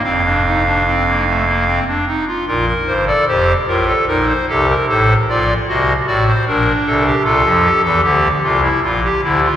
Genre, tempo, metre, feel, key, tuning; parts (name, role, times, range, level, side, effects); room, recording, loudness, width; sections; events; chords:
classical, baroque-style 3-part fugue for pipe organ; 75 BPM; 3/4; straight; Bb major; A4 = 440 Hz
pipe organ, clarinet reed; solo; 0.0-9.6 s; F1 to F5; -12 LUFS; equal
wet cathedral reverb, RT60 4.0 s; recorded in a church or concert hall, vinyl crackle; -12 LUFS; side -10 dB against mid
0.0-2.5 A section; 2.5-9.6 B section
0.0 F5; 2.5 Bb5; 4.1 Cm7/Bb; 4.9 Adim7; 6.5 Bb; 7.3 F/C; 8.8 Gm7/Bb